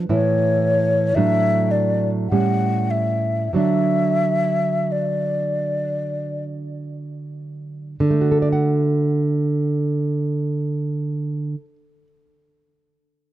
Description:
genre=romantic duo for flute and classical guitar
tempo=38-59 BPM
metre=3/4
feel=rubato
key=D major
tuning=A4 = 442 Hz
part: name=nylon-string guitar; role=accompaniment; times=0.0-12.1 s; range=A2 to F#5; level=-20 LUFS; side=right 2 dB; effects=none
part: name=mellow hollow concert flute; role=melody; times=0.1-6.4 s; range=C#5 to F#5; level=-21 LUFS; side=left 3 dB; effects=none
room=small room ambience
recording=dry, close 1970s-style studio recording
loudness=-18 LUFS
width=side -14 dB against mid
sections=0.0-8.0 A section; 8.0-12.7 B section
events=slowing down 0.0-8.0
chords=0.1 A; 1.2 D/A; 2.3 A7; 3.6 D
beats=| 0.11 1.17 2.32 | 3.57 4.94 6.44 | 8.01 9.54 11.10

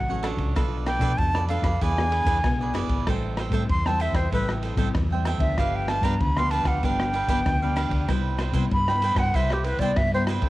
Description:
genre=samba and choro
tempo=96 BPM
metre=4/4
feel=straight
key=unclear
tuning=A4 = 438 Hz
part: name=bright silver concert flute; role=melody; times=0.0-10.2 s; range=G4 to C6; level=-26 LUFS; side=equal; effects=cassette tape
part: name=nylon-string guitar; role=accompaniment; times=0.0-10.5 s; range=G2 to A4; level=-31 LUFS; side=left 5 dB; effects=none
part: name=hollow-body short-scale fingered electric bass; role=bass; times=0.0-10.5 s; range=F#1 to C3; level=-27 LUFS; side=equal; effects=none
part: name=cavaquinho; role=accompaniment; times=0.1-10.5 s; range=D4 to G5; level=-31 LUFS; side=right 6 dB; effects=none
part: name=open jazz drum kit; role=drums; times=0.2-10.5 s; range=kick drum, ride cymbal, rim click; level=-27 LUFS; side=equal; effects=cassette tape
room=light reverb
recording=home recording on cassette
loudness=-21 LUFS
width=side -17 dB against mid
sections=0.0-10.5 A section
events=flute solo 0.0-10.5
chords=0.0 Dmaj7; 0.6 Bm7b5; 1.8 E7; 3.1 Am7; 5.6 G7; 8.1 Cmaj7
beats=| 0.57 1.19 1.82 2.44 | 3.07 3.70 4.33 4.95 | 5.58 6.21 6.83 7.46 | 8.09 8.72 9.35 9.97

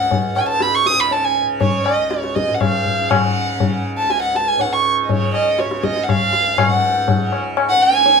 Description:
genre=indian classical, Hindustani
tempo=121 BPM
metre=7/4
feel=straight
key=C# major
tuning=A4 = 438 Hz
part: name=dark violin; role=melody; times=0.0-8.2 s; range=C#5 to D#6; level=-16 LUFS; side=right 2 dB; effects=none
part: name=tanpura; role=drone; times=0.0-8.2 s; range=C#2 to C#3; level=-26 LUFS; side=right 2 dB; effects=none
part: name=tabla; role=percussion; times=0.1-8.2 s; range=none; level=-19 LUFS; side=left 4 dB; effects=none
room=wet small room ambience, RT60 0.5 s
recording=band playing live in one room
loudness=-15 LUFS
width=side -5 dB against mid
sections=0.0-8.2 A section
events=none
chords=none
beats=0.11 0.61 1.11 1.61 2.11 2.61 | 3.10 3.60 4.10 4.60 5.09 5.59 6.08 | 6.58 7.07 7.57 8.06

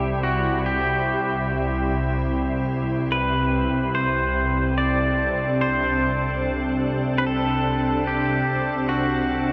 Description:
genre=ambient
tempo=73 BPM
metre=4/4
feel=straight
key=C lydian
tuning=A4 = 440 Hz
part: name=pedal steel guitar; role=melody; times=0.0-9.5 s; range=F#4 to D5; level=-27 LUFS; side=equal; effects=diffuse ambient delay
part: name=soft additive organ-like pad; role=sustained chords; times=0.0-9.5 s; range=C3 to A4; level=-27 LUFS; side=equal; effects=ensemble chorus, built-in reverb
part: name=warm studio double bass section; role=bass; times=0.0-9.5 s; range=C2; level=-29 LUFS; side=equal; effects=none
room=wet huge ambient reverb, RT60 7.8 s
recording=nothing above 8.0 kHz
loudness=-23 LUFS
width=mono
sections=0.0-9.5 A section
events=none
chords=0.0 C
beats=| 0.66 1.49 2.31 3.13 | 3.95 4.77 5.60 6.42 | 7.24 8.06 8.88

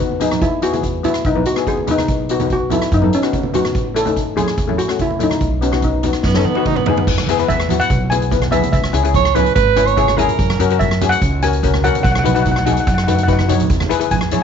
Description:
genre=calypso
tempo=144 BPM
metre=4/4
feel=straight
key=E major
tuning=A4 = 440 Hz
part: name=steel pan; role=accompaniment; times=0.0-14.4 s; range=A3 to C#5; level=-20 LUFS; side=left 13 dB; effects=none
part: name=street-band drum kit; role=drums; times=0.0-14.4 s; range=crash cymbal, hi-hat, kick drum, rim click, snare drum, toms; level=-21 LUFS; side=right 1 dB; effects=none
part: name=congas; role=percussion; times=0.0-14.4 s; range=none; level=-23 LUFS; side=right 9 dB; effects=none
part: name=steel pan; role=melody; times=0.2-14.4 s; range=C#4 to G#5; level=-20 LUFS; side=left 1 dB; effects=none
part: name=upright bass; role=bass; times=0.4-14.4 s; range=G#1 to F#2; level=-20 LUFS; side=right 1 dB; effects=none
part: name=bright alto saxophone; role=second line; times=6.3-10.7 s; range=B3 to C#5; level=-17 LUFS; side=right 14 dB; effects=none
room=light reverb, studio reverb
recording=1960s-style stereo with parts hard left and right, nothing above 7.7 kHz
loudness=-14 LUFS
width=side -7 dB against mid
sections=0.0-7.1 A section; 7.1-14.4 B section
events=drum fill 0.0-0.4, 6.2-7.1, 13.2-13.7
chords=0.4 E; 2.1 B7; 3.8 A6; 5.4 B; 7.1 E; 8.7 C#m7; 10.4 F#; 12.1 B; 13.7 E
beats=0.00 | 0.42 0.83 1.25 1.67 | 2.08 2.50 2.92 3.33 | 3.75 4.17 4.58 5.00 | 5.42 5.83 6.25 6.66 | 7.08 7.49 7.91 8.32 | 8.74 9.15 9.57 9.98 | 10.39 10.81 11.22 11.64 | 12.05 12.46 12.88 13.29 | 13.71 14.12

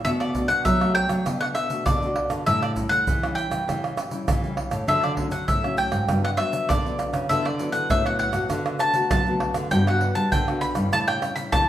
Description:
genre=samba and choro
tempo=99 BPM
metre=4/4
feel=straight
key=D major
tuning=A4 = 440 Hz
part: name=mandolin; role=melody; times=0.0-11.7 s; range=D5 to B5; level=-24 LUFS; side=left 1 dB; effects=none
part: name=nylon-string guitar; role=accompaniment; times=0.0-11.7 s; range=G2 to F#4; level=-31 LUFS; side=left 3 dB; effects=none
part: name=nylon-string guitar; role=bass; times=0.0-11.7 s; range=G2 to B3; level=-27 LUFS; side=right 1 dB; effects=none
part: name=egg shaker, surdo, pandeiro and tamborim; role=percussion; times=0.0-11.7 s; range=none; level=-26 LUFS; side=right 2 dB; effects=none
room=wet large studio reverb, RT60 1.2 s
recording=band playing live in one room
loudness=-21 LUFS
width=side -12 dB against mid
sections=0.0-11.7 A section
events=none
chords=0.1 Bm7; 2.5 A7; 4.9 Dmaj7; 6.1 Gmaj7; 7.3 D69; 8.5 Bm7/D; 9.7 Gmaj7; 10.9 A7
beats=| 0.06 0.66 1.26 1.86 | 2.47 3.07 3.67 4.28 | 4.88 5.48 6.09 6.69 | 7.29 7.90 8.50 9.11 | 9.71 10.32 10.93 11.53

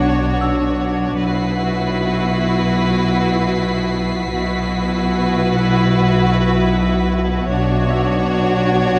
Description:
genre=cinematic, suspense film score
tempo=76 BPM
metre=4/4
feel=straight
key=unclear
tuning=A4 = 440 Hz
part: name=rich chamber violin section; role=melody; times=0.0-9.0 s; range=B4 to C#5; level=-28 LUFS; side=equal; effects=none
part: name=rich chamber violin section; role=second line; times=0.0-9.0 s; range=F#4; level=-26 LUFS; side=equal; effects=none
part: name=rich chamber viola section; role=accompaniment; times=0.0-9.0 s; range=D4 to E4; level=-27 LUFS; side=equal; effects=none
part: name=warbly tape-like pad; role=sustained chords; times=0.0-9.0 s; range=D4 to F#5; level=-27 LUFS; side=equal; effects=chorus, built-in reverb
part: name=rich chamber cello section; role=bass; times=0.0-9.0 s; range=B2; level=-25 LUFS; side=equal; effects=none
part: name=rich studio double bass section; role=bass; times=0.0-9.0 s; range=B1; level=-21 LUFS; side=equal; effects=none
part: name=concert harp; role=texture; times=0.0-9.0 s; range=B4 to B6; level=-35 LUFS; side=equal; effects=none
part: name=rich chamber violin section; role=texture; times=1.2-7.1 s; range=B6 to C7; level=-33 LUFS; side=equal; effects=none
room=wet concert hall reverb, RT60 1.9 s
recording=dark, warm production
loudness=-17 LUFS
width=mono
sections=0.0-9.0 A section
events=none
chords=0.0 Bmadd9; 1.2 Esus2/B; 7.5 Bmadd9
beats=0.41 | 1.20 1.99 2.78 3.57 | 4.36 5.14 5.93 6.72 | 7.51 8.30

